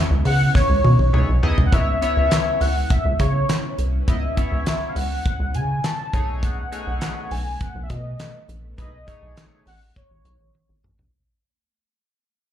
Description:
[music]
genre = early-eighties boogie funk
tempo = 102 BPM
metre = 4/4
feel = straight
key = C# minor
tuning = A4 = 439 Hz
[part]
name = soft string machine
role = sustained chords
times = 0.0-11.1 s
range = C#3 to E4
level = -33 LUFS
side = left 1 dB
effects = ensemble chorus
[part]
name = rubbery square bass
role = bass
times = 0.1-11.1 s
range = G#1 to C#3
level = -20 LUFS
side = equal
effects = none
[part]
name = warm velvety synth lead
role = melody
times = 0.3-10.8 s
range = C#5 to A5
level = -25 LUFS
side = left 1 dB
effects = chorus, plate reverb, slapback echo, tape echo
[part]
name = damped 70s drum kit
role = drums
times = 0.3-11.1 s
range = handclaps, hi-hat, kick drum, snare drum, toms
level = -22 LUFS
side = equal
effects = none
[part]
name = chorused polysynth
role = accompaniment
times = 1.1-9.7 s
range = A3 to D#5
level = -29 LUFS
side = left 2 dB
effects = plate reverb, slapback echo
[sound]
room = light reverb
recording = live gig heard through the venue's PA, club reverb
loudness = -18 LUFS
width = side -10 dB against mid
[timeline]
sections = 0.0-1.7 A section; 1.7-11.1 B section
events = drum fill 0.5-1.7, 10.5-11.1; fade-out 1.7-11.1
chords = 0.0 C#m9; 1.7 C#m7; 6.1 B13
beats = 0.55 1.14 | 1.72 2.31 2.90 3.49 | 4.08 4.67 5.25 5.84 | 6.43 7.02 7.61 8.20 | 8.78 9.37 9.96 10.55

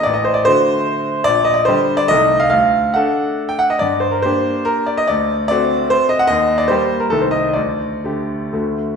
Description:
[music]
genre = classical, romantic triple-time dance for piano with dotted rhythms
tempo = 116-164 BPM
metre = 3/4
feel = rubato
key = unclear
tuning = A4 = 440 Hz
[part]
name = bright baby grand piano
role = solo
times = 0.0-9.0 s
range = A1 to G5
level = -14 LUFS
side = equal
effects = none
[sound]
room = wet recital hall reverb, RT60 1.4 s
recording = recorded in a church or concert hall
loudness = -14 LUFS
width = side -6 dB against mid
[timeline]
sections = 0.0-9.0 A section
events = none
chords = 0.1 D7/A; 1.3 Gm/Bb; 2.1 Adim/C; 2.5 D; 3.8 Gm; 5.1 D7; 6.3 Eb; 7.1 Adim/C; 7.6 Dsus4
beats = | 0.06 0.46 0.87 | 1.26 1.66 2.10 | 2.51 2.95 3.40 | 3.82 4.25 4.68 | 5.08 5.50 5.92 | 6.30 6.70 7.12 | 7.56 8.04 8.54

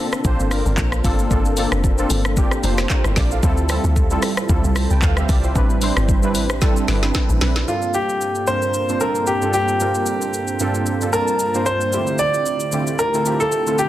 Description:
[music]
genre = amapiano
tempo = 113 BPM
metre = 4/4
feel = swing 55% on 16ths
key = G dorian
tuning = A4 = 440 Hz
[part]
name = warm analog keys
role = accompaniment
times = 0.0-13.9 s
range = G2 to A5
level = -22 LUFS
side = right 1 dB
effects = chorus
[part]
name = afro-pop drum kit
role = drums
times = 0.1-13.9 s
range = handclaps, hi-hat, kick drum, rim click, shaker, snare drum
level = -21 LUFS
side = equal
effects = none
[part]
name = deep log drum bass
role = bass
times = 0.2-7.6 s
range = F1 to D2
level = -20 LUFS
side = equal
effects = none
[part]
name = clear grand piano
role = melody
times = 7.7-13.8 s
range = F4 to D5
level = -19 LUFS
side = equal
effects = tape echo
[sound]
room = little or no reverb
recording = dense, heavily limited modern master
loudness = -16 LUFS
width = side -14 dB against mid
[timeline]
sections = 0.0-7.7 A section; 7.7-13.9 B section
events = drop 0.0-7.7; drum fill 6.6-7.7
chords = 0.0 Gm11; 3.4 Dm11; 5.6 Am11; 7.7 Gm11; 11.9 Dm11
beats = 0.25 0.78 | 1.31 1.84 2.37 2.90 | 3.43 3.96 4.49 5.03 | 5.56 6.09 6.62 7.15 | 7.68 8.21 8.74 9.27 | 9.80 10.33 10.87 11.40 | 11.93 12.46 12.99 13.52

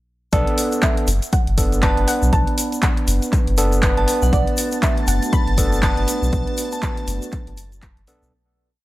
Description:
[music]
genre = deep house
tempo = 120 BPM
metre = 4/4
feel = swing 59% on 16ths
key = B minor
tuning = A4 = 440 Hz
[part]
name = soft round pluck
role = melody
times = 0.3-7.8 s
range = D5 to B5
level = -28 LUFS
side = equal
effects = lush chorus, analog delay
[part]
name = overdriven tine electric piano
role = stabs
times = 0.3-8.3 s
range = B3 to B4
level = -23 LUFS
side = right 1 dB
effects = sidechain pumping
[part]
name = warm sub bass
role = bass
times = 0.3-8.3 s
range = F#1 to B1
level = -20 LUFS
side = equal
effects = tube saturation, sidechain pumping
[part]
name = deep house drum kit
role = drums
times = 0.3-8.2 s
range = handclaps, hi-hat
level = -27 LUFS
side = equal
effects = overdrive, studio reverb
[part]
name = electronic kick drum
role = drums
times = 0.3-7.9 s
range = none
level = -20 LUFS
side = equal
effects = overdrive, studio reverb
[part]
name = egg shaker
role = percussion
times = 0.3-8.3 s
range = none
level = -29 LUFS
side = left 2 dB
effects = none
[part]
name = glassy synth bell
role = melody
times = 1.8-7.1 s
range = F#5 to A5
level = -30 LUFS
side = right 2 dB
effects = chorus, vintage 12-bit sampler grit, analog delay
[part]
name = soft string machine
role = sustained chords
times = 4.3-8.3 s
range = A3 to B4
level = -33 LUFS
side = right 1 dB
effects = phaser, ensemble chorus, sidechain pumping
[part]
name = analog string pad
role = texture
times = 4.3-8.3 s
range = A5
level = -32 LUFS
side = right 1 dB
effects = ensemble chorus, sidechain pumping
[sound]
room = little or no reverb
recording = dry, gritty hardware recording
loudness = -16 LUFS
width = side -17 dB against mid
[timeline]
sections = 0.3-8.3 drop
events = drop 0.3-8.3; fade-out 5.7-8.3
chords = 0.3 Bm7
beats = | 0.33 0.83 1.33 1.83 | 2.33 2.83 3.33 3.83 | 4.33 4.83 5.33 5.83 | 6.33 6.83 7.33 7.83

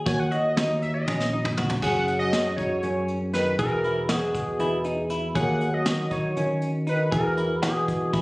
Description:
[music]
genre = progressive instrumental, band music in an uneven meter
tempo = 238 BPM (eighths)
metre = 7/8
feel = straight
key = Eb phrygian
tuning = A4 = 440 Hz
[part]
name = bell-like tine electric piano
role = accompaniment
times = 0.0-8.2 s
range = Eb3 to Db5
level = -31 LUFS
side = equal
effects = none
[part]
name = lead with added fifth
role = melody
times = 0.1-8.2 s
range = G#4 to Ab5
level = -28 LUFS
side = equal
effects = chorus, phaser
[part]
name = clean electric guitar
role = arpeggios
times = 0.1-8.2 s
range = Db4 to Ab4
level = -30 LUFS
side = equal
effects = none
[part]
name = picked electric bass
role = bass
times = 0.1-8.2 s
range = E1 to E3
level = -29 LUFS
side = equal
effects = none
[part]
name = vintage brush drum kit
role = drums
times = 0.1-8.2 s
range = crash cymbal, hi-hat, kick drum, snare drum, toms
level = -29 LUFS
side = equal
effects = none
[part]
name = warm trombone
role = second line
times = 1.8-8.2 s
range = B2 to Db4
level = -31 LUFS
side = equal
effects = none
[sound]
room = light reverb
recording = recorded on a phone in the room, studio reverb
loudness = -22 LUFS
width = side -22 dB against mid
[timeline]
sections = 0.0-1.8 A section; 1.8-8.2 B section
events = analog synth lead solo 0.0-1.8; drum fill 1.1-1.8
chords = 0.0 Ebm7; 1.8 Gbsus2; 3.6 Eadd9; 5.4 Ebm7; 7.1 Eadd9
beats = | 0.06 0.32 0.57 0.82 1.07 1.32 1.58 | 1.83 2.08 2.33 2.58 2.84 3.09 3.34 | 3.60 3.85 4.10 4.35 4.60 4.86 5.11 | 5.36 5.61 5.87 6.12 6.37 6.62 6.88 | 7.13 7.38 7.63 7.88 8.14

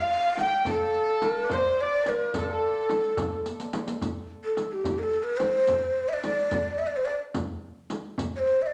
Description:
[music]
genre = Persian modal ensemble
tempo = 72 BPM (dotted quarters)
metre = 6/8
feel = straight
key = A dastgah shur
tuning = A4 = 439 Hz
[part]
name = breathy mellow ney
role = melody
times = 0.0-8.7 s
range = G4 to G5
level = -27 LUFS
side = equal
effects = none
[part]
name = santur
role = second line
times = 0.0-5.4 s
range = A4 to F5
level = -39 LUFS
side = equal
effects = none
[part]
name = warm chamber violin section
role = second line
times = 0.0-3.4 s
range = A4 to G5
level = -35 LUFS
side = equal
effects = none
[part]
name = frame drum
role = percussion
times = 0.4-8.3 s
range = none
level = -38 LUFS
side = equal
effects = none
[part]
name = riq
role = percussion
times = 0.4-8.5 s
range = none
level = -43 LUFS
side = equal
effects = none
[part]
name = tombak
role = percussion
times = 0.4-8.5 s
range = none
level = -42 LUFS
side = equal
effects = none
[sound]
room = wet large studio reverb, RT60 0.9 s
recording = none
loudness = -27 LUFS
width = mono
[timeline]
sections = 0.0-4.0 A section; 4.0-8.7 B section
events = drum fill 3.5-4.0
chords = none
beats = | 0.67 1.50 | 2.34 3.17 | 4.01 4.85 | 5.68 6.52 | 7.36 8.19

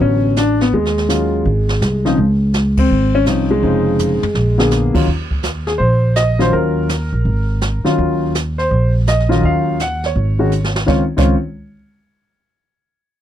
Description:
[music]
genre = jazz piano trio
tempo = 166 BPM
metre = 4/4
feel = swing 65% on 8ths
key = Db major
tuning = A4 = 440 Hz
[part]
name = warm grand piano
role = melody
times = 0.0-11.4 s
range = Db3 to Gb5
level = -16 LUFS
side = left 1 dB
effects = none
[part]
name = upright bass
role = bass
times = 0.0-11.3 s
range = F1 to Eb2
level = -17 LUFS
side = right 1 dB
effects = none
[part]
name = jazz brush drum kit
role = drums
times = 0.0-11.2 s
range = brushed snare drum, crash cymbal, hi-hat, kick drum, ride cymbal, snare drum, toms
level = -22 LUFS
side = right 1 dB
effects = none
[sound]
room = little or no reverb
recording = dry, close 1970s-style studio recording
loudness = -13 LUFS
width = side -11 dB against mid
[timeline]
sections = 0.0-5.1 A section; 5.1-10.9 B section; 10.9-12.3 C section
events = band accent 2.7; drum fill 4.0-4.7, 10.5-10.9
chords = 0.0 D6; 0.7 Ebm9; 1.5 Ab; 2.2 Dbmaj9; 4.4 Bb7b9; 5.1 N.C.; 5.8 Ebm9; 7.3 N.C.; 8.0 Ebm9; 8.7 Bbsus4; 9.4 Ebm9; 10.2 Absus4; 10.9 Dbmaj9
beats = 0.00 0.36 | 0.73 1.09 1.45 1.82 | 2.18 2.54 2.90 3.27 | 3.63 3.99 4.35 4.72 | 5.08 5.44 5.80 6.17 | 6.53 6.89 7.25 7.62 | 7.98 8.34 8.70 9.07 | 9.43 9.79 10.15 10.52 | 10.88 11.24

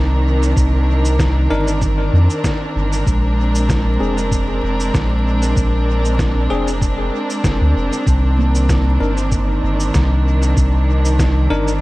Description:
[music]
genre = ambient dub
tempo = 96 BPM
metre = 4/4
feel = swing 54% on 16ths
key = C minor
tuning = A4 = 441 Hz
[part]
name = dark chamber string section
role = sustained chords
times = 0.0-11.8 s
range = Eb3 to Bb4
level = -20 LUFS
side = right 1 dB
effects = none
[part]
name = soft dub sub bass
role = bass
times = 0.0-11.8 s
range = F1 to F2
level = -16 LUFS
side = equal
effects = none
[part]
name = electronic cabasa and snare drum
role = drums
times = 0.4-11.8 s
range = none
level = -26 LUFS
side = equal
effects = dub echo
[part]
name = electronic kick drum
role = drums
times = 0.6-11.3 s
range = none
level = -20 LUFS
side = equal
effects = none
[part]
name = bell-like tine electric piano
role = stabs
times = 1.5-11.7 s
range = C4 to Bb4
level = -25 LUFS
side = left 2 dB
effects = dub echo
[part]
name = handpan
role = arpeggios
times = 8.4-10.0 s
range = Bb3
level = -29 LUFS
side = right 3 dB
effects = none
[sound]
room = light reverb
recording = vinyl crackle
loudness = -14 LUFS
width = side -19 dB against mid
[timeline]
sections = 0.0-11.8 A section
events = none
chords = 0.0 Cm9; 3.1 Bb9; 8.1 Cm9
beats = | 0.57 1.19 1.82 2.44 | 3.07 3.69 4.32 4.94 | 5.57 6.19 6.82 7.44 | 8.07 8.69 9.32 9.94 | 10.57 11.19

